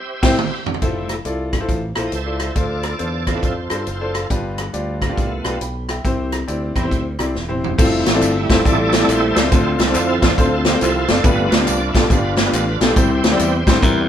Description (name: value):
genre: uptempo gospel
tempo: 138 BPM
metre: 4/4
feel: swing 64% on 8ths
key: F major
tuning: A4 = 439 Hz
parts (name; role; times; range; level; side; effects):
- bright tonewheel organ; sustained chords; 0.0-14.1 s; F3 to E5; -22 LUFS; right 2 dB; slow rotary speaker, overdrive, chorus vibrato
- bright grand piano; accompaniment; 0.2-14.1 s; G2 to B5; -21 LUFS; left 2 dB; none
- modern bright fingered electric bass; bass; 0.2-14.1 s; E1 to G2; -24 LUFS; equal; none
- swinging big-band drum kit; drums; 0.2-14.0 s; crash cymbal, hi-hat, kick drum, rim click, snare drum, toms; -18 LUFS; equal; none
- tambourine and handclaps; percussion; 7.8-14.0 s; none; -32 LUFS; equal; none
room: moderate studio reverb, RT60 0.8 s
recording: band playing live in one room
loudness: -15 LUFS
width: side -10 dB against mid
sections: 0.8-7.8 A section; 7.8-14.1 B section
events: drum fill 0.0-0.8, 7.4-7.8; band accent 0.0-0.8; tonewheel organ solo 0.8-7.8, 7.8-14.1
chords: 0.0 C; 0.8 Fmaj7; 2.6 Dm7; 4.3 G7; 6.0 C; 7.8 Fmaj7; 9.5 Dm7; 11.2 G7; 13.0 C